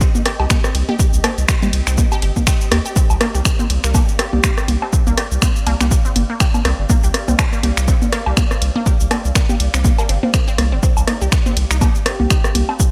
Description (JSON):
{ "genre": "minimal techno", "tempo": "122 BPM", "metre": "4/4", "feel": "swing 57% on 16ths", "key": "C minor", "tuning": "A4 = 437 Hz", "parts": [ { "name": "resonant blip pluck", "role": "riff", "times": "0.0-12.7 s", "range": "Bb3 to G4", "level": "-31 LUFS", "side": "equal", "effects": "phaser, sidechain pumping, delay" }, { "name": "saturated sub bass", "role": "bass", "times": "0.0-12.6 s", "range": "G1 to Eb2", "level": "-20 LUFS", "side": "equal", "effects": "sidechain pumping" }, { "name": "electronic kick drum", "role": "drums", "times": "0.0-12.9 s", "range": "none", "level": "-18 LUFS", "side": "equal", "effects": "none" }, { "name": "punchy analog drum machine", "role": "drums", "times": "0.0-12.9 s", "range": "finger snaps, hi-hat, ride cymbal, shaker", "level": "-25 LUFS", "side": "equal", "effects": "none" }, { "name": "flickering grainy texture", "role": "texture", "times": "0.0-12.9 s", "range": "D5 to Eb5", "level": "-39 LUFS", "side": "equal", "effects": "built-in reverb, analog chorus, sidechain pumping" }, { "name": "granular cloud pad", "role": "texture", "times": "0.0-12.9 s", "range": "C4 to F5", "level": "-37 LUFS", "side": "equal", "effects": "built-in reverb, sidechain pumping" }, { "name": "booming analog drum machine", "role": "percussion", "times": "0.1-12.8 s", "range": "congas, rim click, toms, woodblock", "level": "-24 LUFS", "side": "equal", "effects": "none" }, { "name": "airy dreamy lead", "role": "melody", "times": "4.2-4.9, 12.1-12.8 s", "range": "G4", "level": "-31 LUFS", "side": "equal", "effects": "chorus, delay" } ], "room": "light reverb, digital ambience", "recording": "bright 1980s-style digital production", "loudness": "-16 LUFS", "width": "mono", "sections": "0.0-12.9 A section", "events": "none", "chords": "0.0 Cm", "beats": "0.01 0.50 | 0.99 1.49 1.98 2.47 | 2.96 3.45 3.94 4.44 | 4.93 5.42 5.91 6.40 | 6.89 7.39 7.88 8.37 | 8.86 9.35 9.85 10.34 | 10.83 11.32 11.81 12.30 | 12.80" }